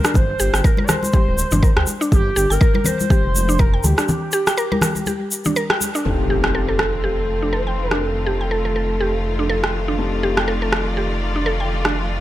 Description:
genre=afro house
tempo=122 BPM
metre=4/4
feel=swing 57% on 16ths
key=unclear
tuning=A4 = 440 Hz
part: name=expressive portamento lead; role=melody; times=0.0-9.7 s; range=G4 to D5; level=-25 LUFS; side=equal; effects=lush chorus, dub echo
part: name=mallet-like synth pluck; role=arpeggios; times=0.0-11.9 s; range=D4 to G5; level=-24 LUFS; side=equal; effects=chorus, sidechain pumping, dub echo
part: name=electronic rim click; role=drums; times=0.0-11.9 s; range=none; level=-21 LUFS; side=right 1 dB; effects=none
part: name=egg shaker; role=percussion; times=0.0-6.0 s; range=none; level=-26 LUFS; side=left 1 dB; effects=none
part: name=congas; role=percussion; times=0.1-5.9 s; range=none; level=-24 LUFS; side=left 2 dB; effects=none
part: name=dark detuned saw bass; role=bass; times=0.2-12.2 s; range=D1 to D2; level=-22 LUFS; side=equal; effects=sidechain pumping
part: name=electronic kick drum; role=drums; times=0.2-3.7 s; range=none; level=-16 LUFS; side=equal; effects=none
part: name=bright symphonic string section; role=sustained chords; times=6.0-12.2 s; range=Eb3 to D5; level=-26 LUFS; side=left 1 dB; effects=sidechain pumping
part: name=felt-muted upright piano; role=stabs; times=6.1-12.2 s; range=C4 to A4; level=-30 LUFS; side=left 5 dB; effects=sidechain pumping, low-pass filter, dub echo
part: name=impact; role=sound effects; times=6.1-8.0 s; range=none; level=-26 LUFS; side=equal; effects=none
room=light reverb, studio reverb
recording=none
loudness=-16 LUFS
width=side -14 dB against mid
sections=0.0-6.1 A section; 6.1-12.2 B section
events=break 4.1-6.1; band accent 5.7; impact 6.1-8.0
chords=0.0 Gm7; 6.1 F7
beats=| 0.15 0.64 1.14 1.63 | 2.12 2.61 3.10 3.60 | 4.09 4.58 5.07 5.56 | 6.05 6.55 7.04 7.53 | 8.02 8.51 9.01 9.50 | 9.99 10.48 10.97 11.46 | 11.96

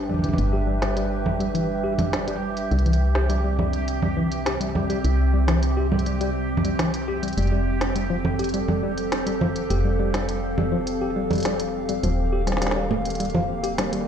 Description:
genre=IDM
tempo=103 BPM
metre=4/4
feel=straight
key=unclear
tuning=A4 = 440 Hz
part: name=warbly tape-like pad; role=sustained chords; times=0.0-14.1 s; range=C3 to F5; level=-27 LUFS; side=right 1 dB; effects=chorus, built-in reverb
part: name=woody FM bass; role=bass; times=0.0-14.1 s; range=Eb1 to C2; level=-26 LUFS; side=equal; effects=tube saturation
part: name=bubbling stepped-filter texture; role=texture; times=0.0-14.1 s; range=G4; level=-34 LUFS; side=right 3 dB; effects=chorus, built-in reverb
part: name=tine electric piano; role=arpeggios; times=0.1-14.0 s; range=E3 to G4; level=-28 LUFS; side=left 2 dB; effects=overdrive, fast stereo tremolo, low-pass filter, digital delay
part: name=organic electronic drum kit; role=drums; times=0.1-14.0 s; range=congas, hi-hat, snare drum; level=-27 LUFS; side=right 2 dB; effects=overdrive, low-pass filter on hats, small room ambience, low-pass filter on snare, low-pass filter on perc
room=light reverb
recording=played on a big sound system in a bare room, large studio reverb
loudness=-21 LUFS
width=side -8 dB against mid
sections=0.0-14.1 A section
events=none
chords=0.0 G6; 2.7 C; 7.4 F; 12.0 Ebadd9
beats=| 0.38 0.97 1.55 2.13 | 2.71 3.30 3.88 4.46 | 5.04 5.63 6.21 6.79 | 7.37 7.96 8.54 9.12 | 9.70 10.29 10.87 11.45 | 12.03 12.62 13.20 13.78

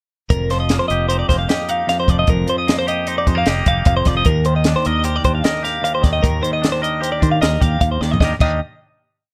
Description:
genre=math rock and midwest emo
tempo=152 BPM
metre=5/4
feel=straight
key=unclear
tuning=A4 = 441 Hz
part: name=twangy electric guitar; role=accompaniment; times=0.3-8.6 s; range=Eb2 to Bb4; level=-25 LUFS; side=equal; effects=subtle chorus
part: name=twelve-string electric guitar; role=arpeggios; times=0.3-8.6 s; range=Bb4 to F5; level=-22 LUFS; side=equal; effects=none
part: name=fingered electric bass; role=bass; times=0.3-8.6 s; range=F1 to Eb3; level=-22 LUFS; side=equal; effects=none
part: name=compact cocktail drum kit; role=drums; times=0.3-8.5 s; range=crash cymbal, hi-hat, kick drum, snare drum, toms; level=-21 LUFS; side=equal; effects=none
room=light reverb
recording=none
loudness=-17 LUFS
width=mono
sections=0.3-8.2 A section; 8.2-9.3 final chord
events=drum fill 8.0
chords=0.3 F9sus4; 4.3 Ebmaj9; 8.2 Ebmaj7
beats=| 0.30 0.70 1.10 1.49 1.89 | 2.29 2.68 3.08 3.47 3.87 | 4.26 4.66 5.05 5.45 5.84 | 6.23 6.63 7.03 7.42 7.82 | 8.21

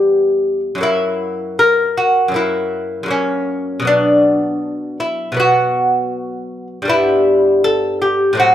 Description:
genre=classical, baroque-style dance for lute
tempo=79 BPM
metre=4/4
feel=rubato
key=B minor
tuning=A4 = 440 Hz
part: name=lute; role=solo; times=0.0-8.5 s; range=E2 to A#4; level=-13 LUFS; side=left 1 dB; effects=none
room=light reverb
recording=band playing live in one room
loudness=-14 LUFS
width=side -11 dB against mid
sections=0.0-8.5 A section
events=none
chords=0.0 Em; 0.8 F#7; 3.9 Bm; 6.9 Em/G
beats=0.08 | 0.84 1.60 2.37 3.12 | 3.87 4.63 5.39 6.14 | 6.89 7.64 8.40

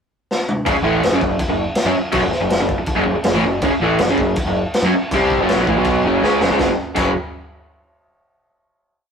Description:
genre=garage rock duo or trio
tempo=162 BPM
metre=4/4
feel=straight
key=F# minor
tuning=A4 = 440 Hz
part: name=raw garage drum kit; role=drums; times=0.3-7.0 s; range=crash cymbal, kick drum, snare drum, toms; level=-21 LUFS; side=equal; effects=none
part: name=raw garage guitar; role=riff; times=0.7-7.1 s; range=F#2 to C#4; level=-17 LUFS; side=equal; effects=overdrive
part: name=growling picked electric bass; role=bass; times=0.7-7.1 s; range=F#1 to F#2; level=-25 LUFS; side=equal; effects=overdrive
room=moderate stone room reverb, RT60 1.0 s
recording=rough rehearsal-room recording, warm saturation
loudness=-15 LUFS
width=side -6 dB against mid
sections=0.0-0.7 pickup bar; 0.7-6.6 riff; 6.6-8.1 final chord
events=drum fill 0.3-0.7, 6.2-6.6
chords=0.0 N.C.; 0.7 F#m; 6.6 F#5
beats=0.29 | 0.66 1.03 1.40 1.77 | 2.14 2.51 2.88 3.25 | 3.62 3.99 4.37 4.74 | 5.11 5.48 5.85 6.22 | 6.59 6.96

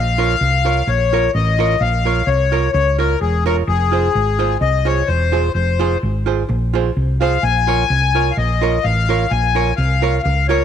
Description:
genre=ska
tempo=128 BPM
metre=4/4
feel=swing 53% on 8ths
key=Bb minor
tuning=A4 = 440 Hz
part: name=accordion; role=melody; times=0.0-10.6 s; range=Ab4 to Ab5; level=-18 LUFS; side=left 8 dB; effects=none
part: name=hollow-body short-scale fingered electric bass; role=bass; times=0.0-10.6 s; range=E1 to Db2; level=-18 LUFS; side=equal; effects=none
part: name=archtop guitar, miked and amplified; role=accompaniment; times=0.2-10.6 s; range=F4 to Db5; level=-22 LUFS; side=right 11 dB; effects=none
room=light reverb, small room ambience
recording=1960s-style stereo with parts hard left and right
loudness=-14 LUFS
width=side -9 dB against mid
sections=0.0-10.6 A section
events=none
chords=0.0 Bbm; 3.7 Fm; 7.4 Bbm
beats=0.41 0.88 1.34 | 1.81 2.28 2.74 3.21 | 3.68 4.15 4.62 5.08 | 5.55 6.02 6.49 6.96 | 7.43 7.90 8.37 8.83 | 9.30 9.77 10.24

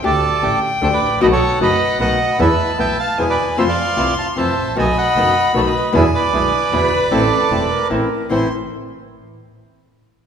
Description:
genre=tango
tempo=152 BPM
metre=3/4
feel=rubato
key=A minor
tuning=A4 = 440 Hz
part: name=rich violin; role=second line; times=0.0-8.5 s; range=F#5 to C6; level=-23 LUFS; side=left 4 dB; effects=none
part: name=nylon-string guitar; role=accompaniment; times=0.0-8.5 s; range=A2 to G4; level=-20 LUFS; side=left 3 dB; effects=none
part: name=bandoneon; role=stabs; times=0.0-8.5 s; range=A3 to A4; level=-28 LUFS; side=right 4 dB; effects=none
part: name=clear double bass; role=bass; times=0.0-8.5 s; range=E1 to F2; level=-22 LUFS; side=right 2 dB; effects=none
part: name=bandoneon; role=melody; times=0.1-8.5 s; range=G#4 to A5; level=-18 LUFS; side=right 2 dB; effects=none
part: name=breathy concert flute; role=second line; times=6.7-8.5 s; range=A4 to C5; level=-22 LUFS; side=right 3 dB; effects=none
room=moderate concert hall reverb, RT60 2.1 s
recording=minimal, uncompressed stereo recording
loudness=-14 LUFS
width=side -7 dB against mid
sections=0.0-8.3 A section; 8.3-9.5 B section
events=none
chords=0.0 Dsus4; 1.2 B7; 2.4 Esus4; 3.2 E; 3.6 Fmaj7; 4.8 B7; 5.9 E7; 7.1 Am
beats=| 0.04 0.43 0.82 | 1.21 1.60 2.00 | 2.39 2.79 3.18 | 3.58 3.97 4.37 | 4.76 5.16 5.55 | 5.94 6.33 6.73 | 7.12 7.51 7.91 | 8.31

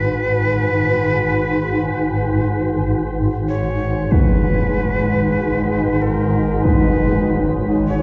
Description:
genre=dark ambient drone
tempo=48 BPM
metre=4/4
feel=straight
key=G# minor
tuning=A4 = 441 Hz
part: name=breathy bright shakuhachi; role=melody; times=0.0-8.0 s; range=A#4 to C#5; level=-24 LUFS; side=equal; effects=shimmer reverb, tape echo
part: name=swarming drone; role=drone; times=0.0-8.0 s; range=G#1 to G#2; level=-21 LUFS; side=equal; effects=built-in reverb
part: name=sweeping resonant pad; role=sustained chords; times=4.8-8.0 s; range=G#3 to C#5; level=-24 LUFS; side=equal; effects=chorus, shimmer reverb
part: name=impact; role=percussion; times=4.1-6.9 s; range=none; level=-22 LUFS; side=equal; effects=low-pass filter on sfx
room=wet cathedral reverb, RT60 4.8 s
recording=in a vast, echoing space, nothing above 7.6 kHz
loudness=-18 LUFS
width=mono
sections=0.0-8.0 A section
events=none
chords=0.0 N.C.; 4.1 G#madd11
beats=0.31 1.57 2.84 | 4.10 5.37 6.62 7.87

